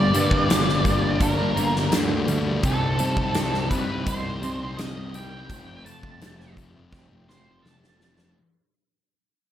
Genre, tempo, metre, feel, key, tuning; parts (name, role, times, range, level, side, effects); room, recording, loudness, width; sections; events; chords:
quiet-loud alternative rock; 84 BPM; 4/4; straight; A4 = 440 Hz
octave-fuzz lead guitar; melody; 0.0-8.3 s; A4 to A5; -28 LUFS; right 2 dB; distortion, slapback echo
semi-hollow electric guitar; arpeggios; 0.0-8.4 s; F2 to Eb4; -32 LUFS; right 6 dB; tremolo
thick fuzz guitar; riff; 0.0-8.4 s; F2 to Eb4; -27 LUFS; left 4 dB; distortion
fuzz picked electric bass; bass; 0.0-8.3 s; F1 to C3; -27 LUFS; equal; overdrive
big rock drum kit; drums; 0.1-8.4 s; hi-hat, kick drum, snare drum; -26 LUFS; equal
light reverb, studio reverb; -20 LUFS; side -11 dB against mid
0.0-8.4 A section
fade-out 0.0-8.4; lead electric guitar solo 0.0-8.4; drum fill 6.9-8.4
0.0 Gm; 2.6 Cm; 5.5 F